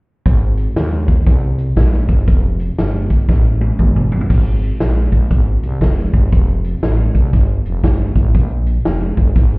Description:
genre	uptempo gospel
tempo	119 BPM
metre	4/4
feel	swing 63% on 8ths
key	Ab major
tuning	A4 = 440 Hz
part	growling FM bass	bass	0.3-9.6 s	F1 to Eb2	-16 LUFS	equal	none
part	swinging big-band drum kit	drums	0.3-9.5 s	crash cymbal, hi-hat, kick drum, snare drum, toms	-14 LUFS	equal	none
room	little or no reverb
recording	heard muffled through a wall, stone room reverb, EQ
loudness	-12 LUFS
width	side -28 dB against mid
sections	0.3-4.3 A section; 4.3-9.6 B section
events	drum fill 3.3-4.3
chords	none

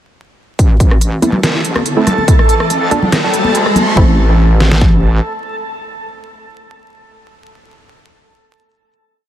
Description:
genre	deep dubstep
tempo	142 BPM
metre	4/4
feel	half-time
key	A minor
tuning	A4 = 440 Hz
part	wobble bass	bass	0.6-5.2 s	G1 to F2	-14 LUFS	equal	chorus, high-pass filter
part	dubstep drum kit	drums	0.6-4.9 s	kick drum, snare drum	-10 LUFS	equal	small room reverb
part	dubstep drum kit	drums	0.6-3.8 s	hi-hat, rim click, snare drum	-18 LUFS	equal	small room reverb, soft clipping on snare
part	riser	sound effects	1.7-4.0 s	none	-21 LUFS	equal	none
part	backwards swelling texture	texture	1.3-4.0 s	A4	-20 LUFS	equal	built-in reverb
part	filtered dub chord stab	stabs	1.2-8.7 s	A3 to A4	-19 LUFS	right 3 dB	chorus, vintage 12-bit sampler grit, dub echo
part	congas	percussion	1.2-3.8 s	none	-18 LUFS	left 1 dB	dub echo
room	light reverb, digital ambience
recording	dense, heavily limited modern master, vinyl crackle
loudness	-9 LUFS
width	side -12 dB against mid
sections	0.6-4.0 build; 4.0-7.4 final chord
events	build-up 0.6-4.0; filter sweep on synth stab 0.6-4.0; riser 1.7-4.0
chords	0.6 Am; 2.3 Dm; 4.0 Am

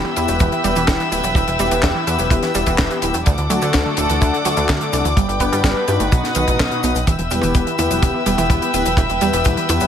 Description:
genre	italo disco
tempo	126 BPM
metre	4/4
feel	straight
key	E minor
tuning	A4 = 440 Hz
part	warm studio string section	sustained chords	0.0-9.9 s	A4 to E6	-21 LUFS	right 1 dB	none
part	analog pluck	arpeggios	0.0-9.9 s	B2 to G4	-24 LUFS	right 4 dB	chorus, tape echo
part	mellow synth brass	stabs	0.0-9.9 s	A3 to B4	-22 LUFS	left 5 dB	chorus, cassette tape, tape echo
part	chorused synth bass	bass	0.0-9.9 s	D1 to G2	-23 LUFS	equal	none
part	tight funk drum kit	drums	0.2-9.9 s	cabasa, handclaps, hi-hat, snare drum, toms	-24 LUFS	left 2 dB	high-pass filter on hats, high-pass filter on toms, high-pass filter on snare, high-pass filter on perc, high-pass filter on room
part	kick drum	drums	0.4-9.6 s	none	-17 LUFS	equal	none
room	light reverb, studio ambience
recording	none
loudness	-15 LUFS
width	side -9 dB against mid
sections	0.0-7.1 A section; 7.1-9.9 B section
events	drum fill 7.1-9.9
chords	0.0 Em; 3.3 D; 5.2 G; 6.1 B; 7.1 Em

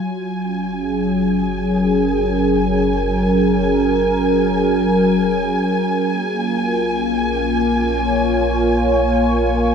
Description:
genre	ambient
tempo	free time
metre	none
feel	none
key	unclear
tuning	A4 = 442 Hz
part	warm analog pad	sustained chords	0.0-9.7 s	Gb3 to Db5	-16 LUFS	equal	chorus
part	round analog bass	bass	0.0-9.7 s	Gb1 to Bb1	-26 LUFS	equal	tube saturation
part	dark studio violin section	texture	0.0-9.7 s	Ab5	-24 LUFS	equal	none
room	wet cathedral reverb, RT60 7.3 s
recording	in a vast, echoing space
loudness	-15 LUFS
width	side -7 dB against mid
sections	0.0-9.7 A section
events	filter sweep on analog synth pad 0.0-9.7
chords	0.0 Gbadd9; 6.1 Bbm

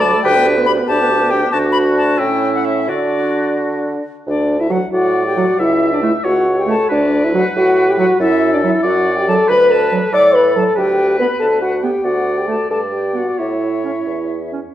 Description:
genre	quick classical-period movement for wind quintet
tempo	85-95 BPM (dotted quarters)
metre	6/8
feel	rubato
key	D major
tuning	A4 = 440 Hz
part	bright silver concert flute	melody	0.0-14.5 s	D5 to D6	-22 LUFS	left 4 dB	none
part	warm oboe	second line	0.0-14.4 s	E4 to E5	-21 LUFS	left 1 dB	none
part	mellow clarinet	accompaniment	0.0-14.6 s	F#3 to B4	-23 LUFS	right 4 dB	none
part	warm French horn	accompaniment	0.0-14.5 s	F#3 to D5	-16 LUFS	equal	none
part	warm bassoon	bass	0.0-14.6 s	C#2 to D3	-20 LUFS	right 2 dB	none
room	moderate recital hall reverb, RT60 1.5 s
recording	worn, warbling old tape, cassette tape, warbly pitch drift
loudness	-13 LUFS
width	side -12 dB against mid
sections	0.0-4.3 A section; 4.3-14.7 B section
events	none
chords	0.2 G/D; 1.5 D; 2.2 A7; 2.9 D; 5.6 A/C#; 6.9 D; 8.2 D/F#; 9.5 D5; 10.8 G/D; 12.0 D; 12.7 G; 13.4 A

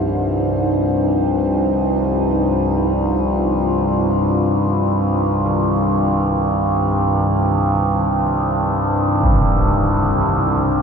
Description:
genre	dark ambient drone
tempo	free time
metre	none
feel	none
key	C minor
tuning	A4 = 444 Hz
part	dark analog pad	sustained chords	0.0-10.8 s	Eb4 to C5	-24 LUFS	equal	chorus, shimmer reverb
part	gamelan-type bronze metallophone	arpeggios	0.0-10.8 s	Eb3 to G4	-32 LUFS	equal	none
part	overtone-sweeping drone	drone	0.0-10.8 s	C2 to G2	-16 LUFS	equal	chorus, built-in reverb
part	bronze singing bowl	texture	0.0-10.8 s	none	barely audible	none	none
part	impact	percussion	9.2-9.4 s	none	-20 LUFS	equal	low-pass filter on sfx
room	wet cathedral reverb, RT60 5.6 s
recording	dark, warm production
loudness	-15 LUFS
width	side -6 dB against mid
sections	0.0-10.8 A section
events	none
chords	0.0 Cm

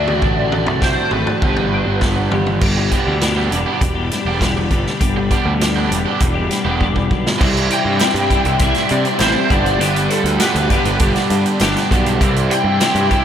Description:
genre	indie rock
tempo	100 BPM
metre	4/4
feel	straight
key	C major from 7.4 s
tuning	A4 = 441 Hz
part	lead guitar through a small cranked amp	melody	0.0-2.0, 7.7-13.2 s	A4 to G5	-22 LUFS	left 2 dB	overdrive, ensemble chorus, tape echo
part	raw garage guitar	riff	0.0-13.2 s	G2 to G4	-21 LUFS	right 8 dB	overdrive, lush chorus, tape echo
part	twelve-string electric guitar	riff	0.0-13.2 s	G2 to G4	-22 LUFS	left 6 dB	ensemble chorus
part	fuzz picked electric bass	bass	0.0-13.1 s	E1 to C3	-20 LUFS	equal	overdrive
part	vintage drum kit	drums	0.1-13.2 s	crash cymbal, hi-hat, kick drum, snare drum, toms	-19 LUFS	equal	none
part	sweeping resonant pad	sustained chords	2.6-13.2 s	E4 to C6	-28 LUFS	right 1 dB	chorus
part	group handclap	percussion	8.0-12.9 s	none	barely audible	none	none
room	moderate huge ambient reverb, RT60 8.2 s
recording	dreamy mix soaked in reverb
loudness	-14 LUFS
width	side -9 dB against mid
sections	0.0-2.6 A section; 2.6-7.4 B section; 7.4-13.2 C section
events	drum fill 6.8-7.4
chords	0.0 D; 1.4 G; 7.4 Cadd9; 9.5 G; 12.2 Cadd9

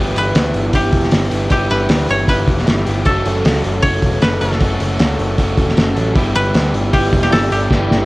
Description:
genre	indie rock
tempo	155 BPM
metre	4/4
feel	straight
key	unclear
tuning	A4 = 441 Hz
part	koto	melody	0.0-8.1 s	F#4 to C#5	-20 LUFS	equal	analog delay
part	overdriven electric guitar	riff	0.0-8.1 s	E3 to A4	-22 LUFS	left 2 dB	none
part	overdriven electric guitar	riff	0.0-8.1 s	F#3 to C#5	-23 LUFS	right 3 dB	lush chorus
part	growling picked electric bass	bass	0.0-8.1 s	E1 to D2	-19 LUFS	equal	overdrive, transformer saturation
part	cloth-damped thuddy drum kit	drums	0.2-8.0 s	hi-hat, kick drum, snare drum	-17 LUFS	equal	none
part	dark analog pad	sustained chords	4.3-8.1 s	A4 to E6	-29 LUFS	left 1 dB	chorus, tremolo
room	little or no reverb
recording	worn, warbling old tape, cassette tape, warbly pitch drift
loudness	-13 LUFS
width	side -20 dB against mid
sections	0.0-8.1 A section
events	drum fill 7.7-8.1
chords	0.0 Em; 3.1 F#m7; 6.2 Em7

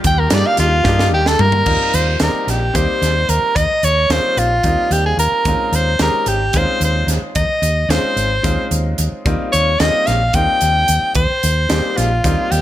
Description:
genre	electric jazz fusion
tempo	221 BPM (eighths)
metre	7/8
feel	straight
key	Eb mixolydian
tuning	A4 = 439 Hz
part	shimmering ambient pad	sustained chords	0.0-1.6 s	Eb3 to G4	-30 LUFS	equal	none
part	hollow-body short-scale fingered electric bass	bass	0.0-12.6 s	Ab1 to G2	-18 LUFS	equal	none
part	crisp fusion drum kit	drums	0.0-12.6 s	crash cymbal, hi-hat, kick drum, snare drum, toms	-21 LUFS	right 1 dB	none
part	breathy soprano saxophone	melody	0.1-12.6 s	F4 to G5	-16 LUFS	equal	slapback echo
part	bright baby grand piano	accompaniment	0.3-12.6 s	G3 to G4	-24 LUFS	left 1 dB	none
room	light reverb, studio reverb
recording	none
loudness	-13 LUFS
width	side -13 dB against mid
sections	0.0-1.7 A section; 1.7-12.6 B section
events	soprano saxophone solo 0.0-1.7; drum fill 0.9-1.7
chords	0.0 Ebmaj9; 1.7 Eb69; 5.5 Dbmaj9; 9.3 Eb69

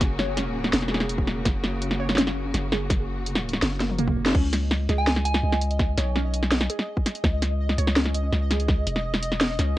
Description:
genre	half-time drum and bass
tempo	166 BPM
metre	4/4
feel	half-time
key	C# dorian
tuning	A4 = 440 Hz
part	rich symphonic string section	sustained chords	0.0-4.3 s	C#3 to F#4	-32 LUFS	left 1 dB	sidechain pumping, cassette tape
part	long sustained 808-style bass	bass	0.0-9.8 s	E1 to C#2	-26 LUFS	equal	none
part	drum and bass drum kit	drums	0.0-9.7 s	crash cymbal, hi-hat, snare drum, toms	-24 LUFS	equal	cassette tape
part	electronic kick drum	drums	0.0-8.8 s	none	-23 LUFS	equal	overdrive, cassette tape
part	warbly dusty pluck	arpeggios	0.2-9.8 s	A#3 to C#5	-32 LUFS	right 1 dB	chorus, phaser, cassette tape, tape echo
part	pulsing gated texture	texture	4.6-9.8 s	D#5	-34 LUFS	equal	chorus, built-in reverb, cassette tape
part	soft synth bell	melody	5.0-5.6 s	G#5	-32 LUFS	right 3 dB	chorus, phaser, cassette tape, analog delay
room	light reverb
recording	home recording on cassette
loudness	-22 LUFS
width	side -15 dB against mid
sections	0.0-4.3 A section; 4.3-9.8 A section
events	drop 0.0-4.3, 4.3-9.8; drum fill 3.8-4.3; band accent 4.3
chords	0.0 F#; 4.3 C#m

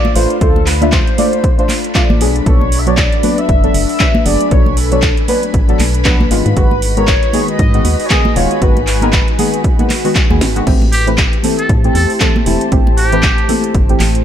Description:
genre	deep house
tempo	117 BPM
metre	4/4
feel	swing 58% on 16ths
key	unclear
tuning	A4 = 440 Hz
part	mellow horn-like synth lead	melody	0.0-9.3 s	A4 to E5	-20 LUFS	right 1 dB	lush chorus, ping-pong delay
part	soft string machine	sustained chords	0.0-14.2 s	G#3 to B5	-24 LUFS	left 1 dB	ensemble chorus, sidechain pumping
part	deep mellow chord stab	stabs	0.0-14.0 s	D#3 to E5	-17 LUFS	left 1 dB	chorus, sidechain pumping, ping-pong delay
part	congas	percussion	0.0-14.1 s	none	-22 LUFS	right 1 dB	none
part	warbly tape-like pad	texture	0.3-14.2 s	D4 to A5	-24 LUFS	left 4 dB	chorus, built-in reverb, sidechain pumping
part	organ-like FM bass	bass	0.2-14.2 s	D#1 to A2	-16 LUFS	equal	sidechain pumping
part	house drum kit	drums	0.2-14.2 s	crash cymbal, handclaps, hi-hat, snare drum	-19 LUFS	right 1 dB	studio reverb
part	electronic kick drum	drums	0.4-13.9 s	none	-14 LUFS	equal	studio reverb
part	trumpet with metal mute	melody	10.9-13.5 s	G4 to A4	-19 LUFS	equal	digital delay
room	digital ambience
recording	none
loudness	-10 LUFS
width	side -10 dB against mid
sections	0.0-14.2 A section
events	drum fill 10.4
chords	0.0 Dm7; 2.2 Bm7; 6.3 G#m7; 10.7 Am7

